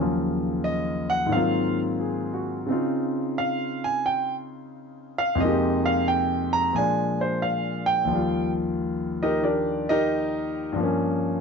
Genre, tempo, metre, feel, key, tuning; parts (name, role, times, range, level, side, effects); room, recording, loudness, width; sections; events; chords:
solo jazz; 89 BPM; 4/4; swing 69% on 8ths, rubato; A4 = 440 Hz
warm concert grand piano; solo; 0.0-11.4 s; Eb2 to Bb5; -22 LUFS; equal
moderate studio reverb, RT60 0.8 s; nothing above 7.6 kHz; -22 LUFS; side -5 dB against mid
0.0-11.4 A section
grand piano solo 0.0-11.4
0.0 Ebm9; 1.3 Ab13; 2.7 Dbmaj9; 5.4 Fm11; 6.8 Bb7; 8.1 Ebmaj9; 10.8 Gm7b5